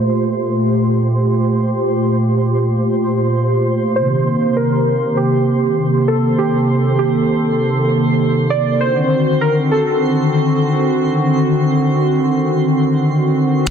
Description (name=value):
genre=IDM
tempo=99 BPM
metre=4/4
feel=straight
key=unclear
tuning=A4 = 440 Hz
part: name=hollow soft pad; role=sustained chords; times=0.0-13.7 s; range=Bb2 to A4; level=-14 LUFS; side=equal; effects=chorus
part: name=twinkling granular texture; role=texture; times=0.0-13.7 s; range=C5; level=-26 LUFS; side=right 2 dB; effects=built-in reverb
part: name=warbly lo-fi synth keys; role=melody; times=4.0-13.0 s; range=G4 to D5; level=-20 LUFS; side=right 1 dB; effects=chorus, tape echo
part: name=dark detuned saw bass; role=bass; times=13.7 s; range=G1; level=-19 LUFS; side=left 2 dB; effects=none
part: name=jungle sampler-style drum kit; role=drums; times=13.7 s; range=crash cymbal, finger snaps, hi-hat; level=-19 LUFS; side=left 2 dB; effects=soft clipping on snare, low-pass filter on snare, small room ambience, low-pass filter on hats, low-pass filter on cymbals
room=moderate echo chamber reverb, RT60 2.7 s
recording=dense, heavily limited modern master, low-pass filter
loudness=-13 LUFS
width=side -7 dB against mid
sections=0.0-13.7 A section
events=filter sweep on analog synth pad 0.0-13.7; filter sweep 0.0-13.7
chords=0.0 Gm9; 4.0 Cm7; 8.8 D7b9